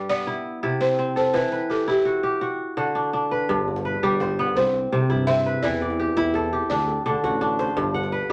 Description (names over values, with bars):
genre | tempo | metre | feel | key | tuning
west african traditional, West African string and xylophone music | 112 BPM (dotted quarters) | 12/8 | straight | G major | A4 = 438 Hz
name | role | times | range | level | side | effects
balafon | melody | 0.0-7.5 s | G4 to E5 | -26 LUFS | equal | none
kora | arpeggios | 0.0-8.3 s | G2 to F#5 | -25 LUFS | equal | none
mellow tuba | bass | 3.5-8.3 s | G1 to G2 | -32 LUFS | equal | none
djembe | percussion | 3.5-8.3 s | none | -36 LUFS | equal | none
room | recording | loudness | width
wet studio reverb, RT60 0.6 s | none | -23 LUFS | mono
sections
0.0-3.5 A section; 3.5-8.3 A section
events
none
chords
0.3 C; 1.3 Em; 2.4 D; 3.5 G; 4.6 C; 5.6 Em; 6.7 D; 7.8 G